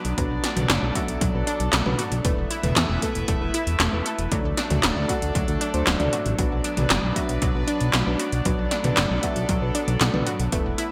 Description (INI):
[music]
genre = synthwave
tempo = 116 BPM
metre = 4/4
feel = straight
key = unclear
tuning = A4 = 440 Hz
[part]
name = chorused pulse-width pad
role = sustained chords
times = 0.0-10.9 s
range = F#3 to E5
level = -32 LUFS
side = equal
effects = sidechain pumping
[part]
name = unison pluck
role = arpeggios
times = 0.0-10.9 s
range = F#3 to A4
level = -34 LUFS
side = equal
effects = delay
[part]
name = 80s electronic pad drums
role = drums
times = 0.0-10.9 s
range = handclaps, hi-hat, snare drum, toms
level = -27 LUFS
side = equal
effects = gated reverb on snare and toms, gated reverb
[part]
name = fat analog bass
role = bass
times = 0.1-10.7 s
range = D1 to E2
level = -28 LUFS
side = equal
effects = sidechain pumping
[part]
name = mellow FM electric piano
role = stabs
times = 0.2-10.9 s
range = F#3 to F#5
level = -34 LUFS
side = equal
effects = chorus, delay
[part]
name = electronic kick drum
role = drums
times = 0.2-10.6 s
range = none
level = -30 LUFS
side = equal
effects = none
[sound]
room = moderate plate reverb, RT60 2.5 s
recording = bright 1980s-style digital production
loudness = -23 LUFS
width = mono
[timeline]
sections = 0.0-10.9 A section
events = none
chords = 0.0 Bm; 2.2 Esus4; 4.3 D; 6.4 Bm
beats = | 0.18 0.70 1.21 1.73 | 2.25 2.77 3.28 3.80 | 4.32 4.83 5.35 5.87 | 6.39 6.90 7.42 7.94 | 8.46 8.97 9.49 10.01 | 10.52